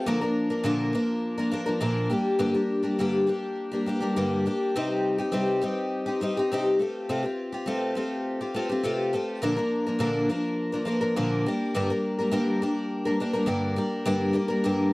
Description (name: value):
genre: rock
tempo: 103 BPM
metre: 4/4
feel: straight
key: unclear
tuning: A4 = 440 Hz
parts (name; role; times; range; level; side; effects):
- picked twelve-string acoustic guitar; solo; 0.0-14.9 s; G2 to Bb4; -24 LUFS; left 1 dB; none
room: light reverb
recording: dry, close 1970s-style studio recording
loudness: -24 LUFS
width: side -21 dB against mid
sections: 0.0-14.1 A section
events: none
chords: 0.1 Bb; 2.1 Gm; 4.8 Cm; 6.8 Fadd9/C; 9.4 Bb; 11.5 Gm